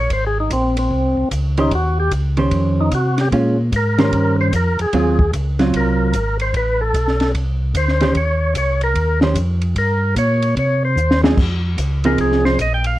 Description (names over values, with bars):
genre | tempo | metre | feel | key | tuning
soul jazz organ trio | 149 BPM | 4/4 | swing 64% on 8ths | Eb mixolydian | A4 = 441 Hz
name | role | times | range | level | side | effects
percussive tonewheel organ | melody | 0.0-13.0 s | C4 to G5 | -19 LUFS | equal | slow rotary speaker
mellow tonewheel organ | bass | 0.0-13.0 s | Ab1 to C3 | -18 LUFS | equal | slow rotary speaker
compact cocktail drum kit | drums | 0.1-12.9 s | crash cymbal, hi-hat, kick drum, ride cymbal, snare drum | -21 LUFS | equal | none
vintage hollow-body jazz guitar | accompaniment | 1.6-12.6 s | Eb3 to C5 | -18 LUFS | right 2 dB | none
room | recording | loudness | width
light reverb | worn, warbling old tape, cassette tape, warbly pitch drift | -15 LUFS | side -15 dB against mid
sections
0.0-13.0 A section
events
tonewheel organ solo 0.0-13.0; drum fill 11.0-11.4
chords
0.1 Abadd9; 1.7 Eb13; 3.3 Bbm7; 4.1 Eb13; 4.9 Ab13; 6.5 Am; 8.2 Eb7sus2; 9.8 Gm; 10.6 Eb13sus4; 11.4 Fm7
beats
| 0.10 0.51 0.91 1.31 | 1.71 2.12 2.52 2.92 | 3.32 3.73 4.13 4.53 | 4.93 5.34 5.74 6.14 | 6.55 6.95 7.35 7.75 | 8.16 8.56 8.96 9.36 | 9.77 10.17 10.57 10.97 | 11.38 11.78 12.18 12.58 | 12.98